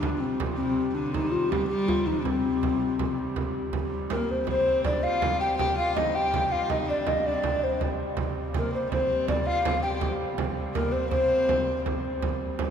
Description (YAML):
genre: medieval dance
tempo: 108 BPM (dotted quarters)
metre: 6/8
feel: straight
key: C minor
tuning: A4 = 441 Hz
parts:
  - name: mellow hollow tenor recorder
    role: melody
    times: 0.0-11.8 s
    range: C4 to G5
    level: -26 LUFS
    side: left 1 dB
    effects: none
  - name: rich viola da gamba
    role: second line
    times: 0.0-11.8 s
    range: C3 to G4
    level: -33 LUFS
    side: left 3 dB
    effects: none
  - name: dark hurdy-gurdy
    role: drone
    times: 0.0-12.7 s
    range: C3 to G3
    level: -36 LUFS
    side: right 2 dB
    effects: none
  - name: frame drum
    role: percussion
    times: 0.0-12.7 s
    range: none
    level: -30 LUFS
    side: right 3 dB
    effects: none
room: wet cathedral reverb, RT60 7.0 s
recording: recorded in a church or concert hall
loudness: -24 LUFS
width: side -8 dB against mid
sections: 0.0-3.4 A section; 3.4-12.2 B section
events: none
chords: none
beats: | 0.03 0.59 | 1.15 1.70 | 2.26 2.81 | 3.37 3.92 | 4.48 5.04 | 5.59 6.14 | 6.70 7.25 | 7.81 8.36 | 8.91 9.46 | 10.02 10.57 | 11.12 11.68 | 12.23